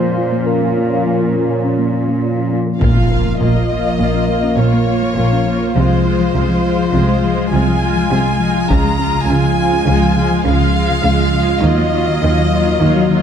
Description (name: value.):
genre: cinematic, hybrid orchestral and electronic film score.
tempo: 102 BPM.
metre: 5/4.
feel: straight.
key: Bb minor.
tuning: A4 = 440 Hz.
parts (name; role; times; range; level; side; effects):
breathy flute-like synth lead; melody; 0.0-2.2 s; Bb4 to C5; -22 LUFS; right 3 dB; chorus, digital delay.
dark analog pad; sustained chords; 0.0-13.2 s; F3 to F5; -18 LUFS; left 2 dB; chorus.
soft round pluck; arpeggios; 0.0-13.2 s; Db3 to Bb4; -22 LUFS; left 3 dB; chorus.
clear symphonic cello section; bass; 0.0-13.2 s; Bb2 to Eb3; -22 LUFS; right 2 dB; none.
rich chamber violin section; melody; 2.8-13.2 s; C5 to Bb5; -21 LUFS; left 4 dB; none.
rich symphonic viola section; accompaniment; 2.8-13.2 s; Gb3 to F4; -22 LUFS; right 2 dB; none.
clear studio double bass section; bass; 2.8-13.2 s; Bb1 to Eb2; -17 LUFS; right 2 dB; none.
taiko ensemble; drums; 2.8-4.0, 8.7-9.8 s; none; -19 LUFS; left 1 dB; none.
impact; sound effects; 2.8-5.8 s; none; -20 LUFS; equal; none.
room: moderate scoring stage reverb, RT60 1.5 s.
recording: dark, warm production.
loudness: -12 LUFS.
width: side -8 dB against mid.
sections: 0.0-2.8 A section; 2.8-13.2 B section.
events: impact 2.8-5.8.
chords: 0.0 Bbm; 5.8 Fm/C; 8.7 Db; 11.6 Ebmadd9.